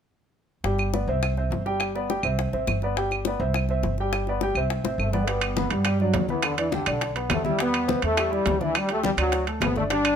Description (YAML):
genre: latin, salsa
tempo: 207 BPM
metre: 4/4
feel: straight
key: G major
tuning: A4 = 439 Hz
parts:
  - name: warm concert grand piano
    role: accompaniment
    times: 0.6-10.1 s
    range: G3 to G5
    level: -28 LUFS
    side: equal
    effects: none
  - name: upright bass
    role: bass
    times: 0.6-10.2 s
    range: G1 to G2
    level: -28 LUFS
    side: right 1 dB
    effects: none
  - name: bongos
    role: percussion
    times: 0.6-10.2 s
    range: none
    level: -32 LUFS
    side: left 7 dB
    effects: none
  - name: claves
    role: percussion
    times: 0.8-10.2 s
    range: none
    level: -31 LUFS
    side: right 2 dB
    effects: none
  - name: bright trombone section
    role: melody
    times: 5.0-10.2 s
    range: D3 to D4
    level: -25 LUFS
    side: equal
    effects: none
  - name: congas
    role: percussion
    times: 5.3-10.2 s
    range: none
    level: -32 LUFS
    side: left 6 dB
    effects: none
  - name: timbales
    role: percussion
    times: 5.3-10.2 s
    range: none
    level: -30 LUFS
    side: right 7 dB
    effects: none
room: light reverb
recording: close, detailed microphones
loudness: -22 LUFS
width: side -8 dB against mid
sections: 0.6-5.3 A section; 5.3-10.2 B section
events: drum fill 4.8-5.3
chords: 0.6 G; 1.2 C; 1.8 G; 2.4 C; 3.0 G; 3.5 C; 4.1 G; 4.7 C; 5.3 G; 6.4 Em7; 7.6 Am7/E; 8.8 Dsus4; 9.3 D5